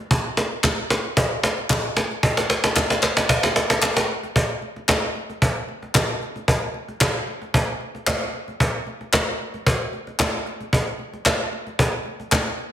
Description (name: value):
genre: pop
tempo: 113 BPM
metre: 4/4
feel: straight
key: none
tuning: none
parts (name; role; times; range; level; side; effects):
- cajon; drums; 0.1-12.7 s; none; -20 LUFS; equal; none
- group handclap; percussion; 0.6-12.5 s; none; -26 LUFS; left 2 dB; none
room: moderate digital room reverb, RT60 1.1 s, small room ambience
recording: dense, heavily limited modern master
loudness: -20 LUFS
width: side -10 dB against mid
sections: 0.0-4.4 A section; 4.4-12.7 B section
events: build-up 0.0-4.4; drum fill 0.0-4.4; drop 4.4-12.7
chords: none